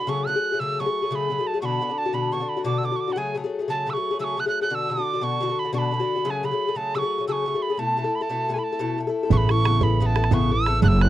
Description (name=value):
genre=celtic folk, Celtic slip jig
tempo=117 BPM (dotted quarters)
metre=9/8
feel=straight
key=A major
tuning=A4 = 442 Hz
part: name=mellow tin whistle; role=melody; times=0.0-11.1 s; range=F#5 to F#6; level=-26 LUFS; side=right 4 dB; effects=none
part: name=Irish bouzouki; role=accompaniment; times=0.0-11.1 s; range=B2 to A4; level=-25 LUFS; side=left 4 dB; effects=none
part: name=upright bass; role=bass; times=9.3-11.1 s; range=F#1 to A1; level=-19 LUFS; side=right 1 dB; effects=none
part: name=bodhran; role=percussion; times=9.3-11.1 s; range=none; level=-24 LUFS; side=right 5 dB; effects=none
room=light reverb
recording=dry, close 1970s-style studio recording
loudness=-21 LUFS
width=side -13 dB against mid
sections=0.0-9.3 A section; 9.3-11.1 B section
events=none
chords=0.1 F#madd9; 1.6 Bm; 3.2 F#madd9; 4.7 Bm; 6.2 F#madd9; 7.8 Asus2; 9.3 Aadd9